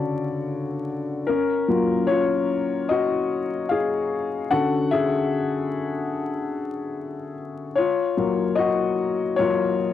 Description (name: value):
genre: hip hop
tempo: 74 BPM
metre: 4/4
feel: swing 64% on 16ths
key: F# major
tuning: A4 = 440 Hz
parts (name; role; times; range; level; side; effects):
- felt-muted upright piano; solo; 0.0-9.9 s; C#3 to F#5; -21 LUFS; left 4 dB; cassette tape, low-pass filter
room: wet booth ambience, RT60 0.3 s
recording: home recording on cassette, vinyl crackle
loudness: -21 LUFS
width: side -11 dB against mid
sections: 0.0-9.9 A section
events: felt piano solo 0.0-9.9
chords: 0.0 Dmaj7; 1.3 F#maj9; 4.5 Dmaj9; 7.8 F#maj7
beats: 0.47 | 1.28 2.09 2.90 3.71 | 4.53 5.34 6.15 6.96 | 7.77 8.58 9.39